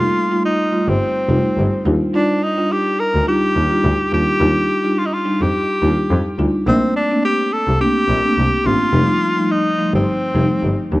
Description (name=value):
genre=afrobeats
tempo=106 BPM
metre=4/4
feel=swing 55% on 16ths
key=unclear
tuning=A4 = 440 Hz
part: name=breathy tenor saxophone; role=melody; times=0.0-10.9 s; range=C4 to Bb4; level=-19 LUFS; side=equal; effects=cassette tape, tape echo
part: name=marimba with soft mallets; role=accompaniment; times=0.0-11.0 s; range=Eb3 to F4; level=-19 LUFS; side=equal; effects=none
part: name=clear double bass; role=bass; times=0.9-11.0 s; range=F1 to F2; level=-18 LUFS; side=equal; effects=none
room=light reverb, small room reverb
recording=home recording on cassette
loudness=-14 LUFS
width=side -19 dB against mid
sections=0.0-11.0 A section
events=none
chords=0.0 F9; 1.9 Ebmaj9; 6.7 Bbmaj9; 8.9 F9